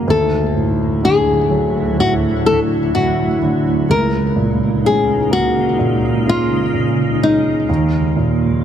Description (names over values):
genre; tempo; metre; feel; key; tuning
pop; 63 BPM; 4/4; straight; unclear; A4 = 440 Hz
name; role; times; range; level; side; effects
nylon-string guitar; melody; 0.0-8.6 s; D#4 to A#4; -18 LUFS; left 3 dB; none
warm concert grand piano; accompaniment; 0.0-8.6 s; C#2 to A#3; -17 LUFS; right 2 dB; none
granular cloud pad; sustained chords; 0.0-8.6 s; C#2 to E#4; -20 LUFS; right 1 dB; built-in reverb
room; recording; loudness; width
light reverb, small room ambience; none; -13 LUFS; side -9 dB against mid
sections
0.0-8.6 A section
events
none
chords
0.1 Dadd9; 3.9 F#6/C#; 7.7 D#madd9